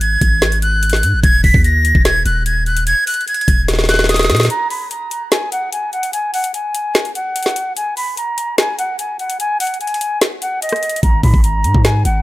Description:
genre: hip hop, trap.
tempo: 147 BPM.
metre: 4/4.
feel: half-time.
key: G# minor.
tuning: A4 = 445 Hz.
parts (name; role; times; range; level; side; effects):
breathy bright jazz flute; melody; 0.0-12.2 s; D#5 to B6; -18 LUFS; equal; low-pass filter.
long sustained 808-style bass; bass; 0.0-4.5, 11.0-12.2 s; D#1 to A#2; -16 LUFS; equal; none.
trap drum kit; drums; 0.0-12.1 s; hi-hat, kick drum, rim click, snare drum; -16 LUFS; equal; none.
room: little or no reverb.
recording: none.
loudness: -13 LUFS.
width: side -17 dB against mid.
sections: 0.0-4.5 A section; 4.5-12.2 B section.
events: drum fill 3.7-4.5; break 4.5-11.0.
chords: 0.0 G#7(no3); 1.2 D#sus4; 4.5 N.C.; 11.0 G#sus2.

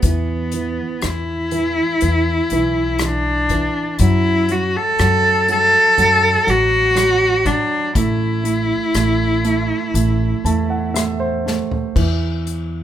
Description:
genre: acoustic folk-pop ballad.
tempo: 60 BPM.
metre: 4/4.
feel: straight.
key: unclear.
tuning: A4 = 443 Hz.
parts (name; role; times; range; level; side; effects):
warm cello; melody; 0.0-10.9 s; B3 to A4; -16 LUFS; left 1 dB; none.
warm baby grand piano; accompaniment; 0.0-12.8 s; E3 to A5; -23 LUFS; right 6 dB; none.
upright bass; bass; 0.0-12.8 s; A1 to F#2; -20 LUFS; left 1 dB; none.
unplugged drum kit; drums; 0.0-12.7 s; crash cymbal, hi-hat, kick drum, rim click, snare drum, toms; -24 LUFS; left 2 dB; none.
room: light reverb.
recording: minimal, uncompressed stereo recording.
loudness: -15 LUFS.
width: side -11 dB against mid.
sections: 0.0-12.0 A section.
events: drum fill 11.5-12.0.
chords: 0.0 E5; 4.0 D (rootless); 8.0 A5; 12.0 N.C..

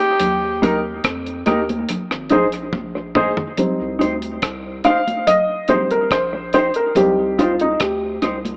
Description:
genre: roots reggae.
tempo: 71 BPM.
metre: 4/4.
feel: straight.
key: C minor.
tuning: A4 = 439 Hz.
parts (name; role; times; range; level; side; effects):
warm tenor saxophone; melody; 0.0-0.6 s; G4; -19 LUFS; equal; tape echo.
soft dub sub bass; bass; 0.2-8.6 s; Ab1 to F2; -29 LUFS; equal; none.
deep reggae drum kit; drums; 0.2-8.6 s; hi-hat, kick drum, rim click, toms; -24 LUFS; equal; tape echo.
congas; percussion; 0.2-8.6 s; none; -27 LUFS; equal; none.
mellow electric guitar; accompaniment; 0.6-8.4 s; Bb3 to C5; -22 LUFS; equal; wide subtle chorus, tape echo.
dark upright piano; stabs; 0.6-8.2 s; Eb3 to F5; -17 LUFS; equal; none.
room: moderate spring reverb, RT60 2.3 s.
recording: AM radio sound.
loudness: -16 LUFS.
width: side -32 dB against mid.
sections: 0.0-3.6 A section; 3.6-8.6 B section.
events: drum fill 2.7-3.6; upright piano solo 3.6-8.6.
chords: 0.2 Eb; 1.9 Ab; 3.6 Cm.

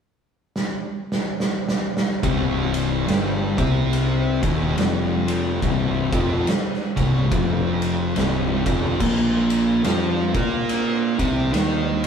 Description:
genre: stoner and doom metal.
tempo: 71 BPM.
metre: 4/4.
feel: swing 59% on 8ths.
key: C minor.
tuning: A4 = 440 Hz.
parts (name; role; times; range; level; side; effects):
oversized low-tuned drum kit; drums; 0.6-12.1 s; crash cymbal, kick drum, ride cymbal, snare drum; -24 LUFS; right 1 dB; none.
thick fuzz guitar; riff; 2.2-12.1 s; C2 to Bb4; -21 LUFS; left 1 dB; distortion.
fuzz picked electric bass; bass; 2.2-12.1 s; C1 to Bb2; -26 LUFS; equal; overdrive.
room: moderate stone room reverb, RT60 1.2 s.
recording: band playing live in one room.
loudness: -19 LUFS.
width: side -7 dB against mid.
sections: 0.0-2.2 A section; 2.2-12.1 B section.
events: drum fill 0.5-2.2.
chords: 0.0 N.C.; 2.2 Cm; 9.0 Bb5.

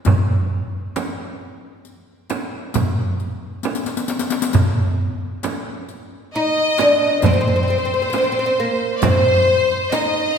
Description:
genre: Arabic maqam ensemble.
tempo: 134 BPM (eighths).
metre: 10/8.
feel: straight.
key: unclear.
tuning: A4 = 437 Hz.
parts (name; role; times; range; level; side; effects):
oud; melody; 0.0-10.4 s; Bb3 to Eb4; -18 LUFS; equal; none.
riq; percussion; 0.0-10.1 s; none; -28 LUFS; left 6 dB; none.
darbuka; percussion; 0.1-10.1 s; none; -22 LUFS; equal; none.
frame drum; percussion; 0.1-10.1 s; none; -23 LUFS; right 4 dB; none.
bright studio violin section; second line; 6.3-10.4 s; C5 to Eb5; -20 LUFS; left 2 dB; none.
room: wet concert hall reverb, RT60 2.1 s.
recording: recorded in a church or concert hall.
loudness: -17 LUFS.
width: side -7 dB against mid.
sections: 0.0-4.5 A section; 4.5-10.4 B section.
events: drum fill 3.6-4.5.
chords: none.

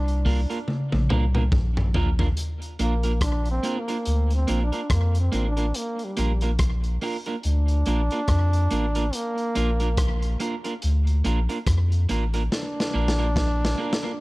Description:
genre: roots reggae.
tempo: 71 BPM.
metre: 4/4.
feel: swing 58% on 16ths.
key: Bb major.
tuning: A4 = 439 Hz.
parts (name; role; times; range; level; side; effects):
warm trombone; melody; 0.0-14.2 s; G3 to D4; -30 LUFS; equal; tape echo.
soft dub sub bass; bass; 0.0-13.7 s; A1 to F2; -22 LUFS; equal; none.
crunchy breakbeat drum kit; drums; 0.1-14.1 s; hi-hat, kick drum, rim click, snare drum, toms; -27 LUFS; equal; none.
electric guitar at the edge of break-up; accompaniment; 0.3-14.1 s; Bb3 to Bb4; -30 LUFS; right 3 dB; tape echo.
room: small room ambience.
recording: none.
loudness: -21 LUFS.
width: side -21 dB against mid.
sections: 0.0-2.4 A section; 2.4-14.2 B section.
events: drum fill 0.7-2.4, 12.5-14.2; trombone solo 2.4-14.2.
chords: 0.0 Bb.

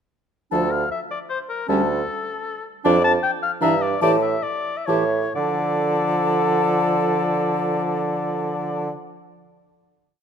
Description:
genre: quick classical-period movement for wind quintet.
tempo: 125-159 BPM.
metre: 3/4.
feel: rubato.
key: D minor.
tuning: A4 = 441 Hz.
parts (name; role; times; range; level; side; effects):
mellow silver concert flute; melody; 0.5-8.9 s; A5 to Bb5; -27 LUFS; left 14 dB; none.
warm oboe; second line; 0.5-8.9 s; A4 to A5; -26 LUFS; left 5 dB; none.
bright clarinet; accompaniment; 0.5-8.9 s; C#4 to A4; -28 LUFS; right 8 dB; none.
warm French horn; accompaniment; 0.5-8.9 s; E3 to G3; -27 LUFS; left 1 dB; none.
warm bassoon; bass; 0.5-8.9 s; D2 to D3; -23 LUFS; right 4 dB; none.
room: moderate concert hall reverb, RT60 1.8 s.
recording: none.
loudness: -19 LUFS.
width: side -7 dB against mid.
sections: 0.5-5.4 A section; 5.4-8.1 final chord.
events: slowing down 2.3-5.4.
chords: 0.5 D5; 1.7 A7/D; 2.8 Dm/F; 3.6 Em7b5/G; 4.0 A5; 5.4 Dm.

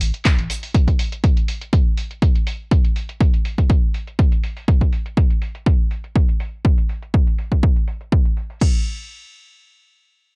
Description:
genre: acid house.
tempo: 122 BPM.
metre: 4/4.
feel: swing 53% on 16ths.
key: unclear.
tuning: A4 = 440 Hz.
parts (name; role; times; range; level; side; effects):
round analog bass; bass; 0.0-0.5 s; A1; -22 LUFS; equal; sidechain pumping.
electro analog drum machine; drums; 0.0-8.7 s; crash cymbal, handclaps, hi-hat; -29 LUFS; equal; low-pass filter on hats, low-pass filter on snare, low-pass filter on cymbals.
soft brush drum kit; drums; 0.0-0.6 s; hi-hat, snare drum; -32 LUFS; right 2 dB; high-pass filter on hats, high-pass filter on snare, high-pass filter on room.
electronic kick drum; drums; 0.3-8.7 s; none; -16 LUFS; equal; none.
room: studio ambience.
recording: dry, gritty hardware recording, cassette tape.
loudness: -16 LUFS.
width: side -38 dB against mid.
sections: 0.0-8.6 A section; 8.6-10.4 B section.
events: none.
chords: none.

